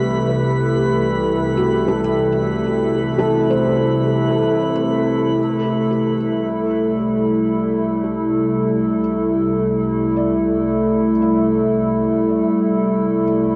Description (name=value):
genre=ambient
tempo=56 BPM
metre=4/4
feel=straight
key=C lydian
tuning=A4 = 440 Hz
part: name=warbly tape-like pad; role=sustained chords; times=0.0-13.6 s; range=C3 to A4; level=-19 LUFS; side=equal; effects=chorus, built-in reverb
part: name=felt-muted upright piano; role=arpeggios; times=0.0-13.6 s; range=F#4 to E5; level=-27 LUFS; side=equal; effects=diffuse ambient delay
part: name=warm symphonic double bass section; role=bass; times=0.0-13.6 s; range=C2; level=-40 LUFS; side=equal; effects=none
part: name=analog drone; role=drone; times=0.0-13.6 s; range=C3 to G3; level=-29 LUFS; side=equal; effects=chorus
part: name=drifting glass-harmonics texture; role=texture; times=0.0-5.4 s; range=B4 to B5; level=-32 LUFS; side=equal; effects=chorus, built-in reverb
room=wet huge ambient reverb, RT60 7.8 s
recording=worn, warbling old tape, cassette tape, warbly pitch drift, nothing above 10.3 kHz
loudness=-18 LUFS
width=mono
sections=0.0-5.4 A section; 5.4-13.6 B section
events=fade-in on double bass section 5.4-13.6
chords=0.0 C6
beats=| 1.04 2.11 3.19 4.29 | 5.38 6.45 7.51 8.58 | 9.64 10.69 11.75 12.81